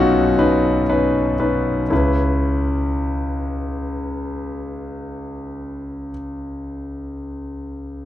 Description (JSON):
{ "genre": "pop", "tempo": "118 BPM", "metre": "4/4", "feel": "straight", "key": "C# minor", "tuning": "A4 = 441 Hz", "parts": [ { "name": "warm concert grand piano", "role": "accompaniment", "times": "0.0-8.1 s", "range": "B1 to B4", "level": "-19 LUFS", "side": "left 1 dB", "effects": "none" } ], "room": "light reverb", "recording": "dark, warm production", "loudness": "-18 LUFS", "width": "side -12 dB against mid", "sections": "0.0-1.9 A section; 1.9-6.0 B section", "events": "none", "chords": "0.0 Badd9; 1.9 C#m7" }